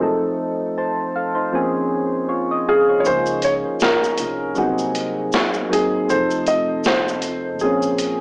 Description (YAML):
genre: lo-fi hip hop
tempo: 79 BPM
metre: 4/4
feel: swing 57% on 16ths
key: Db major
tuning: A4 = 440 Hz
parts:
  - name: soft electric-piano-like synth keys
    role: accompaniment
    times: 0.0-8.2 s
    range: F3 to A5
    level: -23 LUFS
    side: equal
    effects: chorus, phaser, low-pass filter, cassette tape
  - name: felt-muted upright piano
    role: melody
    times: 2.7-8.2 s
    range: Gb4 to Eb5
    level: -22 LUFS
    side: equal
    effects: low-pass filter, cassette tape, analog delay
  - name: boom bap sampler-style drum kit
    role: drums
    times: 3.0-8.2 s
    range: hi-hat, shaker, snare drum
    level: -25 LUFS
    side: equal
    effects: vintage 12-bit sampler grit, cassette tape
  - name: upright bass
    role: bass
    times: 3.1-8.2 s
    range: F1 to Db2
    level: -37 LUFS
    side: equal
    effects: none
room: moderate studio reverb, RT60 0.5 s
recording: home recording on cassette, small speaker sound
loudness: -20 LUFS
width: mono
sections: 0.0-3.1 A section; 3.1-8.2 B section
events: filter sweep on synth keys 0.0-3.1; kick muted 3.1-8.2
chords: 0.0 F7; 1.5 Bbm7; 3.1 Db6; 4.6 Ab7/C; 6.1 F7; 7.6 Bbm7